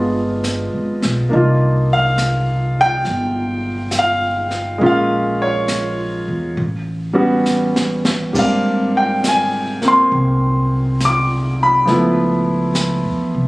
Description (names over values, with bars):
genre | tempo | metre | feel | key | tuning
jazz ballad | 68 BPM | 4/4 | swing 66% on 8ths | unclear | A4 = 440 Hz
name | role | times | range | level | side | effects
clear concert grand piano | accompaniment | 0.0-13.5 s | F3 to D6 | -16 LUFS | equal | none
upright bass | bass | 0.0-13.5 s | G1 to Fb2 | -20 LUFS | equal | none
jazz brush drum kit | drums | 0.4-13.5 s | brushed snare drum, crash cymbal, hi-hat, kick drum, snare drum | -23 LUFS | equal | none
room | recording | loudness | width
light reverb | recorded on a phone in the room, studio ambience | -14 LUFS | side -21 dB against mid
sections
0.0-13.5 A section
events
drum fill 7.5-8.3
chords
0.0 G7b9; 1.3 Cm11; 4.8 Bbm7; 6.6 A13; 8.3 Abmaj9#11; 11.9 Db7alt